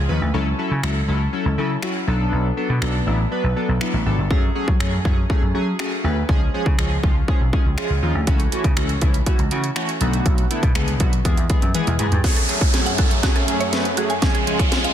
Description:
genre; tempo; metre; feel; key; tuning
dance-pop; 121 BPM; 4/4; straight; F# minor; A4 = 440 Hz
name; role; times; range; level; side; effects
vintage slap bass; bass; 0.0-12.2 s; G1 to F#3; -21 LUFS; equal; sidechain pumping
chorused polysynth; accompaniment; 0.1-14.8 s; D3 to B4; -24 LUFS; left 1 dB; sidechain pumping
house drum kit; drums; 0.8-14.9 s; crash cymbal, finger snaps, hi-hat, kick drum, snare drum, toms; -20 LUFS; equal; overdrive, soft clipping on snare
lush unison pad; sustained chords; 12.2-14.9 s; C#2 to G#4; -26 LUFS; right 1 dB; chorus, sidechain pumping
mallet-like synth pluck; arpeggios; 12.2-14.9 s; C#4 to G#5; -28 LUFS; right 4 dB; chorus, sidechain pumping, dub echo
riser and downlifter; sound effects; 12.2-14.9 s; none; -24 LUFS; right 1 dB; none
room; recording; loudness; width
light reverb; dense, heavily limited modern master; -17 LUFS; side -10 dB against mid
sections
0.0-12.2 A section; 12.2-14.9 B section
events
drum fill 11.7-12.2, 12.2-14.9; build-up 12.2-14.9; riser 12.2-14.9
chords
0.3 A6/C#; 2.1 Bm7; 4.3 F#madd9; 6.3 C#; 8.3 A6/C#; 10.0 Bm7; 11.2 E; 12.2 F#madd9; 14.2 C#

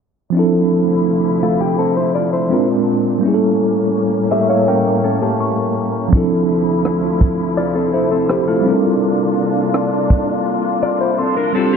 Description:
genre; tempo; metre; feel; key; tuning
contemporary R&B; 83 BPM; 4/4; straight; D minor; A4 = 440 Hz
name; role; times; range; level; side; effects
bell-like tine electric piano; accompaniment; 0.3-11.8 s; F3 to C#6; -16 LUFS; right 2 dB; fast stereo tremolo
muted studio string section; sustained chords; 0.3-11.8 s; D2 to F4; -21 LUFS; left 1 dB; sidechain pumping
direct-recorded clean electric guitar; arpeggios; 1.4-11.8 s; A3 to E5; -20 LUFS; left 5 dB; spring reverb
tight funk drum kit; drums; 6.1-10.3 s; kick drum, rim click; -15 LUFS; equal; none
swell; sound effects; 8.9-10.5 s; none; -26 LUFS; equal; none
room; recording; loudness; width
moderate echo chamber reverb, RT60 2.3 s; worn, warbling old tape, cassette tape, warbly pitch drift, low-pass filter; -14 LUFS; side -6 dB against mid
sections
0.3-11.8 A section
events
filter sweep 0.3-11.8; tine electric piano fill 4.0-6.1, 10.8-11.8; swell 8.9-11.8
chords
0.3 Dm9; 2.5 Bb9; 3.2 A7b9; 6.1 Dm9; 8.7 C9sus4

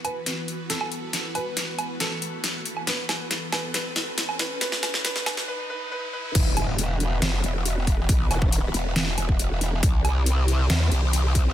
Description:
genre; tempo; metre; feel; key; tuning
heavy wobble dubstep; 138 BPM; 4/4; half-time; E minor; A4 = 440 Hz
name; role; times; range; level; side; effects
clear grand piano; melody; 0.0-6.3 s; A4 to B4; -34 LUFS; equal; low-pass filter, ping-pong delay
supersaw pad; sustained chords; 0.0-11.5 s; E3 to C5; -34 LUFS; equal; phaser, sidechain pumping
dubstep drum kit; drums; 0.0-11.4 s; crash cymbal, hi-hat, snare drum, woodblock; -26 LUFS; equal; overdrive, high-pass filter on snare, high-pass filter on hats, high-pass filter on perc, high-pass filter on cymbals, high-pass filter on room
riser and impact; sound effects; 0.2-8.1 s; none; -36 LUFS; equal; none
growl bass; bass; 6.3-11.5 s; E1 to C2; -23 LUFS; equal; chorus, overdrive
electronic kick drum; drums; 6.3-11.4 s; none; -22 LUFS; equal; overdrive
formant-sweep wobble bass; bass; 7.2-10.9 s; E1 to E2; -23 LUFS; equal; chorus, overdrive
room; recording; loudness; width
little or no reverb; high-pass filter; -22 LUFS; side -12 dB against mid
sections
0.0-6.4 A section; 6.4-11.5 B section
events
build-up 0.0-6.4; drum fill 0.0-5.5; filter sweep on grand piano 0.0-6.4; riser 0.2-6.4; break 5.5-6.4; drop 6.4-11.5; impact 6.4-8.1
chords
0.0 Esus2; 9.8 C

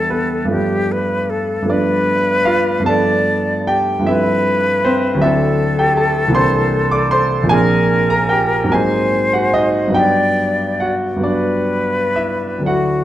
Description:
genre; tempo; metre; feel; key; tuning
classical, impressionist duo for flute and grand piano; 40-53 BPM (dotted quarters); 6/8; rubato; unclear; A4 = 439 Hz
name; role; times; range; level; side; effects
bright silver concert flute; melody; 0.0-13.0 s; F#4 to D5; -18 LUFS; left 2 dB; none
warm grand piano; accompaniment; 0.0-13.0 s; A#1 to D6; -15 LUFS; right 1 dB; none
room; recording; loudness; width
moderate recital hall reverb, RT60 1.6 s; dark, warm production; -13 LUFS; side -13 dB against mid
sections
0.0-13.0 A section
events
none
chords
0.0 Em7; 0.5 G9; 4.1 Fmaj9/G; 5.2 D9; 6.4 C9; 7.5 A#9; 8.7 G#9; 10.0 Gmaj7

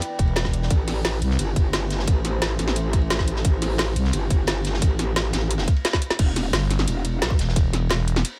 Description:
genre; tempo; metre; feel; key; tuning
dark technical drum and bass; 175 BPM; 4/4; straight; E minor; A4 = 441 Hz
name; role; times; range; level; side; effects
deep dark ambient pad; sustained chords; 0.0-6.2 s; A3 to G5; -37 LUFS; equal; chorus, built-in reverb, sidechain pumping
crunchy breakbeat drum kit; drums; 0.0-8.3 s; hi-hat, ride cymbal, snare drum; -36 LUFS; equal; high-pass filter on cymbals, high-pass filter on hats, high-pass filter on snare, high-pass filter on room
drum and bass drum kit; drums; 0.0-8.3 s; crash cymbal, hi-hat, snare drum; -28 LUFS; equal; none
growling FM bass; bass; 0.2-1.4, 4.0-4.1, 6.5-8.2 s; E1 to C2; -24 LUFS; equal; none
electronic kick drum; drums; 0.2-7.6 s; none; -23 LUFS; equal; none
metallic wobble bass; bass; 0.7-7.4 s; E1 to B1; -27 LUFS; equal; chorus, overdrive, sidechain pumping
room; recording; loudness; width
studio ambience; none; -22 LUFS; mono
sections
0.0-6.2 A section; 6.2-8.4 A section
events
drop 0.0-6.2, 6.2-8.4; drum fill 5.8-6.2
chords
0.0 Em; 0.7 Am; 6.2 Em

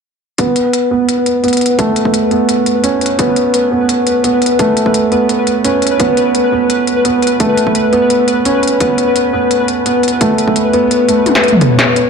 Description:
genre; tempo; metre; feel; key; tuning
half-time drum and bass; 171 BPM; 4/4; half-time; unclear; A4 = 437 Hz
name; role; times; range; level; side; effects
felt-muted upright piano; arpeggios; 0.4-12.1 s; A3 to C#4; -12 LUFS; right 2 dB; vintage 12-bit sampler grit, low-pass filter, digital delay
electronic kick drum; drums; 0.4-11.7 s; none; -19 LUFS; left 1 dB; high-pass filter on kick, high-pass filter on room
industrial drum kit; drums; 0.4-12.0 s; hi-hat, snare drum, toms; -17 LUFS; left 1 dB; none
pulsing gated texture; texture; 0.4-12.1 s; B4 to C#5; -17 LUFS; left 4 dB; chorus, built-in reverb
room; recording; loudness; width
wet lush hall reverb, RT60 1.7 s; dark, warm production; -10 LUFS; side -6 dB against mid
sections
0.4-12.1 A section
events
filter sweep on felt piano 0.4-12.1; kick drops out 11.3-11.6; drum fill 11.3-11.6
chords
0.4 B5

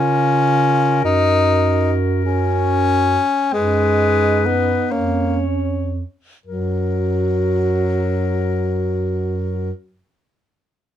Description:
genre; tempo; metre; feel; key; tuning
classical, lyrical piece for single-reed quartet; 37-52 BPM (dotted quarters); 6/8; rubato; F# major; A4 = 440 Hz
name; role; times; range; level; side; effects
bright clarinet; melody; 0.0-9.7 s; A#4 to C#5; -26 LUFS; left 9 dB; none
mellow alto saxophone; second line; 0.0-9.7 s; C#4 to F#4; -24 LUFS; right 7 dB; none
clear tenor saxophone; accompaniment; 0.0-9.7 s; F#3 to D#4; -18 LUFS; left 3 dB; none
dark bass clarinet; bass; 0.0-9.7 s; E#2 to C#3; -21 LUFS; right 2 dB; none
room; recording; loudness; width
light reverb; none; -16 LUFS; side -10 dB against mid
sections
0.0-6.5 A section; 6.5-9.5 B section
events
slowing down 0.0-6.5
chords
0.0 C#; 1.0 F#; 3.5 C#7/F#; 6.5 F#

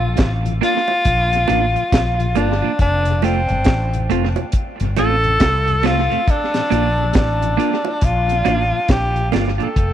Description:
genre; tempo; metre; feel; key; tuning
roots reggae; 69 BPM; 4/4; swing 61% on 16ths; Bb major; A4 = 441 Hz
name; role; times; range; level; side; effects
breathy tenor saxophone; melody; 0.0-9.9 s; C4 to A4; -19 LUFS; left 1 dB; dub echo
mellow tonewheel organ; accompaniment; 0.0-9.7 s; F2 to F4; -28 LUFS; left 12 dB; slow rotary speaker
mellow fretless electric bass; bass; 0.0-9.9 s; F1 to C2; -20 LUFS; equal; analog chorus
deep reggae drum kit; drums; 0.2-9.9 s; hi-hat, kick drum, snare drum; -19 LUFS; equal; tape echo
bongos; percussion; 0.2-9.6 s; none; -30 LUFS; right 12 dB; none
clean electric guitar; accompaniment; 0.6-9.7 s; A3 to F4; -24 LUFS; right 13 dB; dub echo
room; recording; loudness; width
light reverb, small room ambience; 1960s-style stereo with parts hard left and right; -15 LUFS; side -10 dB against mid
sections
0.0-9.9 A section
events
none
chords
0.0 Bb; 2.8 F; 6.3 Bb

